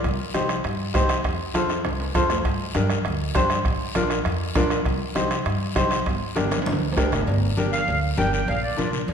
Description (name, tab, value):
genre	latin, cumbia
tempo	199 BPM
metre	4/4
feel	straight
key	G minor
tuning	A4 = 440 Hz
part	upright bass	bass	0.0-9.1 s	G1 to G2	-27 LUFS	equal	none
part	bombo	percussion	0.0-7.3 s	none	-28 LUFS	right 2 dB	none
part	guiro	percussion	0.0-9.1 s	none	-34 LUFS	left 6 dB	none
part	timbales and cowbell	percussion	0.0-9.1 s	none	-33 LUFS	right 3 dB	none
part	congas	percussion	0.1-9.1 s	none	-30 LUFS	left 3 dB	none
part	bright upright piano	accompaniment	0.3-9.0 s	D4 to C5	-25 LUFS	equal	none
part	accordion	melody	7.7-8.9 s	D5 to G5	-25 LUFS	right 1 dB	light tremolo tuning
room	wet recital hall reverb, RT60 1.4 s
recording	recorded in a church or concert hall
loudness	-21 LUFS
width	side -7 dB against mid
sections	0.0-7.3 A section; 7.3-9.1 B section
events	drum fill 1.7-2.4, 6.5-7.3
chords	0.0 Cm; 1.2 F; 2.4 Gm; 3.7 Bb; 4.9 Cm; 6.1 Gm; 8.5 Bb